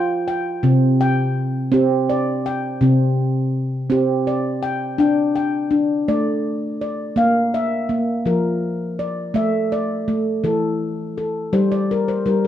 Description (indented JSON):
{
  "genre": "world meditative, meditative tuned percussion",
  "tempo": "55 BPM (dotted quarters)",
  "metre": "6/8",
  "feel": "straight",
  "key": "D minor",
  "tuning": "A4 = 440 Hz",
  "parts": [
    { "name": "handpan", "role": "solo", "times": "0.0-12.5 s", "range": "C3 to G5", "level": "-17 LUFS", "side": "equal", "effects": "none" }
  ],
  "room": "wet studio reverb, RT60 0.5 s",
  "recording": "none",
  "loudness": "-17 LUFS",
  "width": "side -11 dB against mid",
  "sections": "0.0-5.0 A section; 5.0-12.5 B section",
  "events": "handpan fill 11.5-12.5",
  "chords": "0.0 F5; 0.6 C5; 5.0 D5; 7.2 Bb; 9.4 A5; 11.5 D5",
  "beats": "| 0.63 1.72 | 2.81 3.90 | 4.99 6.08 | 7.17 8.27 | 9.36 10.45 | 11.54"
}